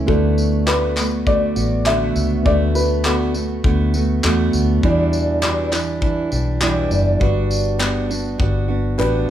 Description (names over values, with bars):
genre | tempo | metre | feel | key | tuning
acoustic pop | 101 BPM | 4/4 | straight | D major | A4 = 440 Hz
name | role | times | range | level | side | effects
overdriven reed electric piano | accompaniment | 0.0-9.3 s | G3 to E5 | -29 LUFS | left 3 dB | none
picked steel-string acoustic guitar | accompaniment | 0.0-9.3 s | E2 to F#4 | -20 LUFS | right 3 dB | none
vintage muted fingered electric bass | bass | 0.0-9.3 s | F#1 to E2 | -20 LUFS | left 1 dB | none
dark upright piano | melody | 0.1-3.3, 9.0-9.3 s | A4 to E5 | -21 LUFS | left 1 dB | none
modern studio drum kit | drums | 0.1-8.5 s | handclaps, kick drum, tambourine | -22 LUFS | left 1 dB | none
group handclap | percussion | 0.7-9.1 s | none | -33 LUFS | left 4 dB | none
room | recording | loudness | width
moderate large studio reverb, RT60 1.4 s | band playing live in one room | -16 LUFS | side -11 dB against mid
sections
0.1-9.3 A section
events
drum fill 8.4-9.3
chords
0.1 D6; 4.8 Em7; 7.2 Gmaj7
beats
| 0.08 0.67 1.27 1.86 | 2.46 3.05 3.65 4.24 | 4.83 5.43 6.02 6.62 | 7.21 7.80 8.40 8.99